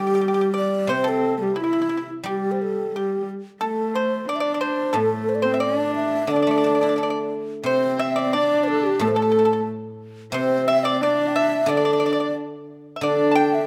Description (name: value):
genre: chinese traditional, Chinese chamber ensemble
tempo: 89 BPM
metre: 2/4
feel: rubato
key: D shang mode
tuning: A4 = 440 Hz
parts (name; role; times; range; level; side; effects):
- breathy low xiao; melody; 0.0-13.7 s; E4 to G5; -26 LUFS; equal; none
- pipa; second line; 0.0-13.7 s; E4 to A5; -28 LUFS; equal; none
- warm horsehead fiddle; second line; 0.0-13.7 s; G3 to E4; -28 LUFS; equal; none
- guzheng; accompaniment; 0.0-13.7 s; A2 to A4; -28 LUFS; equal; none
- mellow hollow large dizi; second line; 7.6-13.7 s; G4 to G5; -30 LUFS; equal; none
room: light reverb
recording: close, detailed microphones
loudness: -22 LUFS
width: mono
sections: 0.0-7.7 A section; 7.7-13.7 B section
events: none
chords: none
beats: 0.22 | 0.89 1.57 | 2.26 2.94 | 3.61 4.28 | 4.95 5.62 | 6.29 6.97 | 7.66 8.34 | 9.01 9.67 | 10.34 11.01 | 11.68 12.35 | 13.03